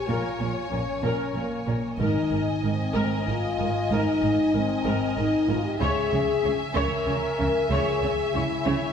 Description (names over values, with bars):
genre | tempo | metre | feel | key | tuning
cinematic, epic orchestral film score | 94 BPM | 3/4 | straight | Ab major | A4 = 442 Hz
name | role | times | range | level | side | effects
warm symphonic violin section | melody | 0.0-8.9 s | Ab5 | -38 LUFS | left 3 dB | none
warm symphonic violin section | second line | 0.0-8.9 s | Db5 to Fb5 | -32 LUFS | left 1 dB | none
dark French horn section | sustained chords | 0.0-8.9 s | Bb3 to Bb4 | -26 LUFS | left 3 dB | none
dark symphonic viola section | accompaniment | 0.1-8.9 s | Bb4 to Db5 | -32 LUFS | equal | none
warm symphonic cello section | bass | 0.1-8.7 s | Ab2 to Db3 | -30 LUFS | right 2 dB | none
warm symphonic double bass section | bass | 0.1-8.7 s | Ab1 to Db2 | -30 LUFS | right 3 dB | none
timpani | percussion | 2.0-2.9 s | Ab2 | -34 LUFS | left 1 dB | none
room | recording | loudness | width
wet scoring stage reverb, RT60 1.9 s | heard from further back in the room | -22 LUFS | side -7 dB against mid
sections
0.0-8.9 A section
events
none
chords
0.0 Bbm7; 2.0 Absus2; 5.8 Dbm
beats
| 0.08 0.71 1.35 | 1.99 2.63 3.27 | 3.91 4.54 5.17 | 5.80 6.44 7.07 | 7.71 8.34